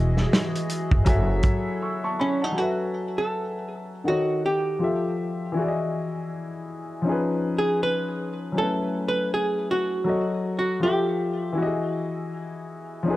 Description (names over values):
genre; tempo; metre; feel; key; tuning
lo-fi hip hop; 80 BPM; 4/4; swing 60% on 16ths; F# dorian; A4 = 441 Hz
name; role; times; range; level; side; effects
warm upright piano; accompaniment; 0.0-13.2 s; D#3 to E6; -26 LUFS; left 2 dB; none
hollow soft pad; sustained chords; 0.0-2.6 s; E3 to D#5; -33 LUFS; right 2 dB; chorus
upright bass; bass; 0.0-1.4 s; E1 to F#1; -23 LUFS; equal; none
warm soul drum kit; drums; 0.2-1.6 s; hi-hat, kick drum, snare drum; -22 LUFS; equal; none
archtop guitar, miked and amplified; melody; 2.2-11.4 s; C#4 to B4; -26 LUFS; right 1 dB; none
room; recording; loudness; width
light reverb; dark, warm production; -22 LUFS; side -16 dB against mid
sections
0.0-2.6 A section; 2.6-13.2 B section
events
break 1.8-2.6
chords
0.0 Emaj9; 1.1 F#m9; 2.6 F#m11; 4.1 D#m7b5; 4.8 Fmaj9; 5.6 Emaj9; 7.1 C#9/E#; 8.6 F#m11; 10.1 F#m6; 10.8 Fmaj9; 11.6 Emaj9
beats
0.31 1.06 1.81 | 2.56 3.31 4.06 4.81 | 5.56 6.31 7.06 7.81 | 8.56 9.31 10.06 10.81 | 11.56 12.31 13.06